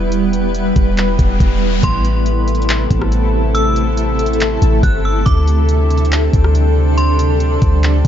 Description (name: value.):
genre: hip hop, atmospheric cloud-rap.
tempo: 140 BPM.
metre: 4/4.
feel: half-time.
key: A minor.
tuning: A4 = 440 Hz.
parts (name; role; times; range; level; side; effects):
shimmering ambient pad; sustained chords; 0.0-8.1 s; C3 to B4; -18 LUFS; equal; chorus, built-in reverb, tremolo.
warm 808-style bass; bass; 0.0-8.1 s; E1 to D2; -15 LUFS; equal; none.
drifting glass-harmonics texture; texture; 0.0-8.1 s; B3 to A5; -28 LUFS; left 1 dB; chorus, built-in reverb.
smooth R&B drum kit; drums; 0.1-8.1 s; handclaps, hi-hat, kick drum, rim click; -17 LUFS; equal; none.
riser; sound effects; 0.8-1.8 s; none; -30 LUFS; left 3 dB; none.
metallic FM bell; melody; 1.8-7.8 s; C6 to F#6; -23 LUFS; right 1 dB; chorus, low-pass filter, ping-pong delay.
room: little or no reverb.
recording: dark, warm production, nothing above 7.6 kHz.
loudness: -12 LUFS.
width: side -10 dB against mid.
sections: 0.0-1.8 A section; 1.8-8.1 B section.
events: riser 0.8-1.8.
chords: 0.0 Em; 1.8 Amadd9; 5.3 D7sus4.